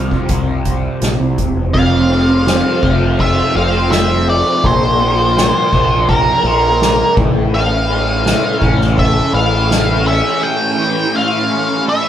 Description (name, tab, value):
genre	psychedelic rock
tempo	83 BPM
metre	4/4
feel	straight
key	unclear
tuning	A4 = 440 Hz
part	octave-fuzz lead guitar	melody	0.0-12.1 s	Bb4 to G5	-17 LUFS	equal	distortion
part	cranked stack guitar	riff	0.0-12.1 s	F2 to C5	-17 LUFS	equal	overdrive, phaser
part	growling picked electric bass	bass	0.0-10.2 s	D1 to C2	-18 LUFS	equal	overdrive
part	soft-mallet drum kit	drums	0.1-10.2 s	crash cymbal, hi-hat, kick drum, ride cymbal, snare drum	-18 LUFS	left 1 dB	none
part	soft string machine	sustained chords	1.7-12.1 s	E3 to D5	-24 LUFS	right 4 dB	ensemble chorus
room	moderate stone room reverb, RT60 0.9 s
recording	band playing live in one room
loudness	-11 LUFS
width	side -10 dB against mid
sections	0.0-1.8 A section; 1.8-12.1 B section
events	break 10.4-12.1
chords	0.0 Csus4; 1.8 F; 4.6 Bb; 7.2 A